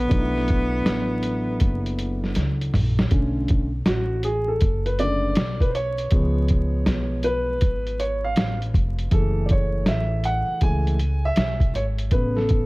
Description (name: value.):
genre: hip hop, jazz-hop.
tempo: 80 BPM.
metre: 4/4.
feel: swing 65% on 16ths.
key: B dorian.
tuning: A4 = 440 Hz.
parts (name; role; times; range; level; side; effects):
breathy tenor saxophone; melody; 0.0-2.4 s; B3; -26 LUFS; left 1 dB; slapback echo.
dark baby grand piano; accompaniment; 0.0-12.7 s; C#3 to G#5; -26 LUFS; equal; none.
upright bass; bass; 0.0-12.7 s; E#1 to C#2; -25 LUFS; equal; none.
lo-fi sampler-style drum kit; drums; 0.1-12.7 s; hi-hat, kick drum, snare drum, toms; -22 LUFS; equal; none.
room: small room reverb.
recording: dark, warm production, vinyl crackle.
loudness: -20 LUFS.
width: side -23 dB against mid.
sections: 0.0-3.1 A section; 3.1-12.7 B section.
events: drum fill 2.4-3.1; grand piano solo 3.1-12.7.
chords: 0.0 Bm7; 6.1 C#7; 9.1 F#m9; 12.1 A.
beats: | 0.11 0.86 1.61 2.36 | 3.11 3.86 4.61 5.36 | 6.11 6.86 7.61 8.36 | 9.11 9.86 10.61 11.36 | 12.11.